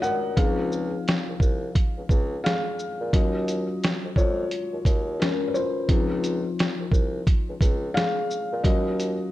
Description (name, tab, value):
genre	lo-fi hip hop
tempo	87 BPM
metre	4/4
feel	swing 61% on 16ths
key	unclear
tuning	A4 = 445 Hz
part	felt-muted upright piano	accompaniment	0.0-9.3 s	F3 to Gb5	-27 LUFS	left 2 dB	cassette tape, low-pass filter
part	lo-fi sampler-style drum kit	drums	0.0-9.2 s	hi-hat, kick drum, shaker, snare drum	-23 LUFS	equal	vintage 12-bit sampler grit
part	dark bassoon	bass	0.4-9.2 s	C2 to Bb2	-30 LUFS	equal	none
room	little or no reverb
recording	none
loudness	-22 LUFS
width	side -15 dB against mid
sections	0.0-9.3 A section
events	felt piano solo 0.0-9.3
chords	0.4 Dbmaj7; 3.1 Ebm7; 5.9 Dbmaj7; 8.6 Ebm7